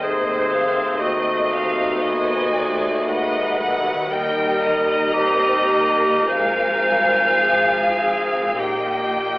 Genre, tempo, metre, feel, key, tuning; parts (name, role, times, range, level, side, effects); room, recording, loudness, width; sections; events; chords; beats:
classical, slow romantic movement for symphony orchestra; 49-60 BPM; 4/4; rubato; Eb major; A4 = 436 Hz
rich studio violin section; melody; 0.0-9.4 s; C5 to G5; -24 LUFS; left 1 dB
rich studio violin section; second line; 0.0-9.4 s; C5 to Bb5; -26 LUFS; equal
warm clarinet; second line; 0.0-9.4 s; Gb4 to C5; -21 LUFS; equal
bright studio viola section; accompaniment; 0.0-9.4 s; F3 to Eb5; -25 LUFS; right 1 dB
mellow French horn section; sustained chords; 0.0-9.4 s; Eb3 to Eb4; -28 LUFS; left 1 dB
concert harp; arpeggios; 0.0-9.4 s; Ab2 to C5; -36 LUFS; left 2 dB
clear studio double bass section; bass; 0.0-9.4 s; Ab1 to Eb2; -33 LUFS; right 1 dB
rich studio cello section; bass; 0.0-9.4 s; Eb2 to Bb2; -32 LUFS; equal
wet concert hall reverb, RT60 2.0 s; telephone sound; -17 LUFS; side -21 dB against mid
0.0-9.4 A section
0.0 Ebdim7; 4.1 Eb; 6.3 Fm/Ab; 8.6 Eb/Bb
| 0.01 1.01 2.02 3.07 | 4.11 5.15 6.32 7.44 | 8.60